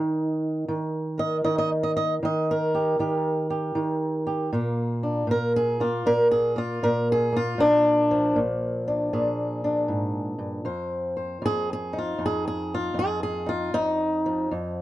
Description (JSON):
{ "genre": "acoustic country blues, solo or duo", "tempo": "78 BPM", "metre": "4/4", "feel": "swing 65% on 8ths", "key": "Bb mixolydian", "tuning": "A4 = 444 Hz", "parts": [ { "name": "fingerpicked swing-style acoustic guitar", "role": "solo", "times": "0.0-14.8 s", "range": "F2 to Eb5", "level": "-22 LUFS", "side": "equal", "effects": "none" } ], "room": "light reverb", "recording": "dry, close 1970s-style studio recording", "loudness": "-22 LUFS", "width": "side -15 dB against mid", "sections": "0.0-14.8 A section", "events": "steel-string acoustic guitar solo 0.0-14.8", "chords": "0.0 Eb; 4.5 Bb7; 10.7 F7(no3)", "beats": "0.68 | 1.46 2.23 3.00 3.77 | 4.54 5.31 6.08 6.85 | 7.62 8.39 9.15 9.92 | 10.69 11.46 12.22 12.99 | 13.76 14.52" }